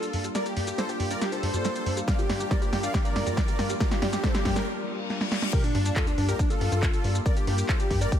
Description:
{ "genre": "uplifting trance", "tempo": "139 BPM", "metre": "4/4", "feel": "straight", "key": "G minor", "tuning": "A4 = 439 Hz", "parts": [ { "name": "supersaw chords", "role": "melody", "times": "0.0-8.2 s", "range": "D4 to F5", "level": "-32 LUFS", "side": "equal", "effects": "lush chorus, sidechain pumping, ping-pong delay" }, { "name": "plucky unison lead", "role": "second line", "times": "0.0-8.2 s", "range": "D4 to F5", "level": "-36 LUFS", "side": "equal", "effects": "sidechain pumping, ping-pong delay" }, { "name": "lush unison pad", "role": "sustained chords", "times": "0.0-8.2 s", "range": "G3 to F4", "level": "-34 LUFS", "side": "left 1 dB", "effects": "chorus, sidechain pumping" }, { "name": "tight sequenced synth", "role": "arpeggios", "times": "0.0-4.6 s", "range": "G3 to G5", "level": "-40 LUFS", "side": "right 4 dB", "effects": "none" }, { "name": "punchy analog drum machine", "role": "drums", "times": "0.0-8.2 s", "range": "crash cymbal, handclaps, hi-hat, shaker, snare drum", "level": "-31 LUFS", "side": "equal", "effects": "sidechain pumping on hats, sidechain pumping on perc, sidechain pumping on cymbals" }, { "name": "riser, reverse cymbal and sub drop", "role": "sound effects", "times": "1.8-7.3 s", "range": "none", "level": "-38 LUFS", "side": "left 2 dB", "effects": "none" }, { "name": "tight sequencer bass", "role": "bass", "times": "0.1-8.1 s", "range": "G2", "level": "-28 LUFS", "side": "equal", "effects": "sidechain pumping" }, { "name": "electronic kick drum", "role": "drums", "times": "2.1-8.2 s", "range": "none", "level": "-26 LUFS", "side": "equal", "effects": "none" } ], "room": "light reverb", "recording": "none", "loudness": "-24 LUFS", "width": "side -10 dB against mid", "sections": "0.0-5.5 A section; 5.5-8.2 B section", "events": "build-up 0.0-5.5; drum fill 0.0-4.7, 5.1-5.5; break 4.7-5.5; reverse cymbal 4.7-5.5; drop 5.5-8.2; impact 5.5-7.3", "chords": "0.0 Gm7" }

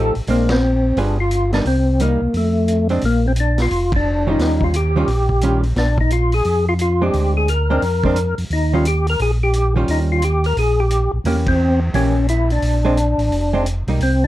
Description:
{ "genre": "soul jazz organ trio", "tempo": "175 BPM", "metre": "4/4", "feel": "swing 63% on 8ths", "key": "Bb mixolydian", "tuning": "A4 = 441 Hz", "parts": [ { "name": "percussive tonewheel organ", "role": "melody", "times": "0.0-14.3 s", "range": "A3 to Bb4", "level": "-19 LUFS", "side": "left 1 dB", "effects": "slow rotary speaker, chorus vibrato" }, { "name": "archtop guitar, miked and amplified", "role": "accompaniment", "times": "0.0-14.0 s", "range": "Eb3 to Ab4", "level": "-21 LUFS", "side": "right 2 dB", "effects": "none" }, { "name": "mellow tonewheel organ", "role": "bass", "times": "0.0-14.3 s", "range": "F1 to F2", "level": "-18 LUFS", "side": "equal", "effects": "overdrive, chorus vibrato, slow rotary speaker" }, { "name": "vintage drum kit", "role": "drums", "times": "0.1-14.1 s", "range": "hi-hat, kick drum, ride cymbal, snare drum", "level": "-27 LUFS", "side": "equal", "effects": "none" } ], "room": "light reverb", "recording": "dark, warm production", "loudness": "-15 LUFS", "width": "side -15 dB against mid", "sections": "0.0-3.0 A section; 3.0-14.3 A section", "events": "band accent 0.5, 3.9, 11.4", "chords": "0.3 Bb9; 1.0 G7b9; 1.7 Cm7; 2.3 F; 3.0 Bb; 4.4 Eb9; 5.8 Bb9; 8.5 Eb9; 11.3 Edim7; 12.6 Bb9" }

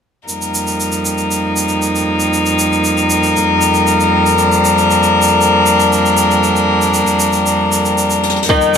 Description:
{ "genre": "folktronica", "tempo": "117 BPM", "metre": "4/4", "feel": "straight", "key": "unclear", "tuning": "A4 = 436 Hz", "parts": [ { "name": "rich string quartet", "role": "sustained chords", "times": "0.3-8.8 s", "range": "F2 to Bb4", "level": "-12 LUFS", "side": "left 1 dB", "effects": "none" }, { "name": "shaker and hi-hat", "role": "drums", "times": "0.3-8.8 s", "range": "none", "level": "-20 LUFS", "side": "right 2 dB", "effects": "none" }, { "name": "picked twelve-string acoustic guitar", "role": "arpeggios", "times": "8.5-8.8 s", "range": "Eb3", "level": "-10 LUFS", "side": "left 3 dB", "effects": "low-pass filter" }, { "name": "electronic kick drum", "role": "drums", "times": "8.5-8.6 s", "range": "none", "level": "-17 LUFS", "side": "equal", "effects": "none" } ], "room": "wet studio reverb, RT60 0.6 s", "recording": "none", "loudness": "-11 LUFS", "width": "side -7 dB against mid", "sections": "0.3-8.5 A section", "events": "drum fill 8.2", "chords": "0.3 Eb/F" }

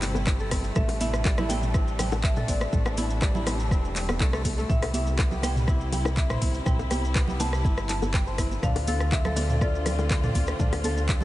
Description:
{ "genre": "afro house", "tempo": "122 BPM", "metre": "4/4", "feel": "straight", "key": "A minor", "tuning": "A4 = 438 Hz", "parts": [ { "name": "marimba with medium hard mallets", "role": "melody", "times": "0.0-11.2 s", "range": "D5 to A5", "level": "-36 LUFS", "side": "right 1 dB", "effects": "diffuse ambient delay" }, { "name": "dark studio string section", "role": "sustained chords", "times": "0.0-11.2 s", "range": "C3 to F4", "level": "-35 LUFS", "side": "left 2 dB", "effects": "sidechain pumping" }, { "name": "kora", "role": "arpeggios", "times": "0.0-11.2 s", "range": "G3 to D5", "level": "-35 LUFS", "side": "equal", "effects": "sidechain pumping, diffuse ambient delay" }, { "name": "round analog bass", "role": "bass", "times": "0.0-11.2 s", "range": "E1 to D2", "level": "-28 LUFS", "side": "equal", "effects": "sidechain pumping" }, { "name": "afro-pop drum kit", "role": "drums", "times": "0.0-11.2 s", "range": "handclaps, hi-hat, rim click, toms", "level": "-31 LUFS", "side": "equal", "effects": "none" }, { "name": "bongos", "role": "percussion", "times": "0.0-11.2 s", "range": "none", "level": "-37 LUFS", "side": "left 5 dB", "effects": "none" }, { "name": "congas", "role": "percussion", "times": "0.0-11.2 s", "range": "none", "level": "-35 LUFS", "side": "right 3 dB", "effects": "none" }, { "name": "maracas", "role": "percussion", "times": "0.0-11.2 s", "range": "none", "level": "-42 LUFS", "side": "right 1 dB", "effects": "none" }, { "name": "electronic kick drum", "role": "drums", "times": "0.3-11.2 s", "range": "none", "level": "-25 LUFS", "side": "equal", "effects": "none" } ], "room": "light reverb, small room ambience", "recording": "nothing above 10.7 kHz", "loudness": "-23 LUFS", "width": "side -16 dB against mid", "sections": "0.0-11.2 A section", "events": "none", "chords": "0.0 Am7; 4.7 Cmaj7; 8.6 Dm7" }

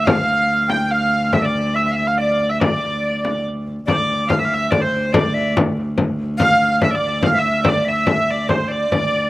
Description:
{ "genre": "medieval dance", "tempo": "142 BPM", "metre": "3/4", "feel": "straight", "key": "D minor", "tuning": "A4 = 440 Hz", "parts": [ { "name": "dark hurdy-gurdy", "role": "melody", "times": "0.0-9.3 s", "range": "C5 to G5", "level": "-19 LUFS", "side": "right 2 dB", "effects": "slapback echo" }, { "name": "bright reedy tenor recorder", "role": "second line", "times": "0.0-9.3 s", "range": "C5 to G5", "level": "-24 LUFS", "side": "left 3 dB", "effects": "none" }, { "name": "clear viola da gamba", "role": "drone", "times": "0.0-9.3 s", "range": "D2", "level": "-23 LUFS", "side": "equal", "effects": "none" }, { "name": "frame drum", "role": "percussion", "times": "0.1-9.1 s", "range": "none", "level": "-19 LUFS", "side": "left 2 dB", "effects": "none" } ], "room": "little or no reverb", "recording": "recorded outdoors, with no room sound", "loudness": "-16 LUFS", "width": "side -17 dB against mid", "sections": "0.0-3.9 A section; 3.9-9.3 B section", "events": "none", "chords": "none" }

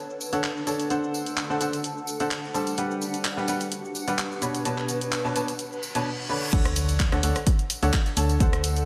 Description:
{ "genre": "piano house", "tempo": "128 BPM", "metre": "4/4", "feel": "swing 54% on 16ths", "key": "D major", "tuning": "A4 = 439 Hz", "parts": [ { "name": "granular cloud pad", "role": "texture", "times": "0.0-8.9 s", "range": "D4 to A5", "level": "-35 LUFS", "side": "equal", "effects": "built-in reverb, sidechain pumping" }, { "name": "house drum kit", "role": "drums", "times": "0.1-8.9 s", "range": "crash cymbal, handclaps, hi-hat, rim click, shaker", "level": "-34 LUFS", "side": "equal", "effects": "low-pass filter on hats, low-pass filter on perc, low-pass filter on snare, low-pass filter on cymbals, low-pass filter on room" }, { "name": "tambourine", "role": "percussion", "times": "0.2-8.8 s", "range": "none", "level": "-41 LUFS", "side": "equal", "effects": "none" }, { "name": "clear grand piano", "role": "riff", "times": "0.3-8.9 s", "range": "B2 to B5", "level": "-31 LUFS", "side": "equal", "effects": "vintage 12-bit sampler grit, sidechain pumping, tape echo" }, { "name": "reverse cymbal and impact", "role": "sound effects", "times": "5.8-8.4 s", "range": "none", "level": "-38 LUFS", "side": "equal", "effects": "none" }, { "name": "organ-like FM bass", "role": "bass", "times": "6.5-8.9 s", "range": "D2", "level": "-27 LUFS", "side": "equal", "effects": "tube saturation, sidechain pumping" }, { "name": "electronic kick drum", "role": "drums", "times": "6.5-8.5 s", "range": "none", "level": "-25 LUFS", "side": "equal", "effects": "none" } ], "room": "moderate lush hall reverb, RT60 2.1 s", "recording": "none", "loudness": "-26 LUFS", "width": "mono", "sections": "0.0-6.5 A section; 6.5-8.9 B section", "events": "reverse cymbal 5.8-6.5; drop 6.5-8.9; impact 6.5-8.4", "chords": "0.0 Dmaj7; 0.9 D7; 2.8 Gmaj7; 4.4 Bm9; 6.5 Dmaj7" }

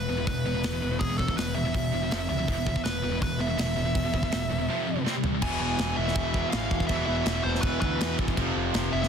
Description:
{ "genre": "heavy metal", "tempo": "163 BPM", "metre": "4/4", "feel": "straight", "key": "unclear", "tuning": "A4 = 439 Hz", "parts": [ { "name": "nasal lead guitar with a parked wah", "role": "melody", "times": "0.0-9.1 s", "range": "G#4 to G#5", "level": "-31 LUFS", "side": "right 1 dB", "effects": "overdrive" }, { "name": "heavy high-gain guitar", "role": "riff", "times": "0.0-9.1 s", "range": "E2 to C4", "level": "-31 LUFS", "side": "left 10 dB", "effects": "distortion" }, { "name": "heavy high-gain guitar", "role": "riff", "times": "0.0-9.1 s", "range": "E2 to C4", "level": "-33 LUFS", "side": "right 14 dB", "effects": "distortion" }, { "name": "fuzz picked electric bass", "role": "bass", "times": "0.0-9.1 s", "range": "E1 to E2", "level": "-32 LUFS", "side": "equal", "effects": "overdrive" }, { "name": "tight metal drum kit", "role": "drums", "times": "0.3-9.1 s", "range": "crash cymbal, hi-hat, kick drum, snare drum, toms", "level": "-31 LUFS", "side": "equal", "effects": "soft clipping on kick" }, { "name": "raw garage guitar", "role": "riff", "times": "5.4-9.1 s", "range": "E2 to F3", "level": "-34 LUFS", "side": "right 1 dB", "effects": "overdrive" } ], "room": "light reverb", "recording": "dense, heavily limited modern master", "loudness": "-25 LUFS", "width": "side -7 dB against mid", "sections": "0.0-5.4 A section; 5.4-9.1 B section", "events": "drum fill 5.1-5.4", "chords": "0.0 E5; 2.1 F5; 2.5 E5; 4.7 F5; 5.1 C5; 5.4 E5; 8.4 F5" }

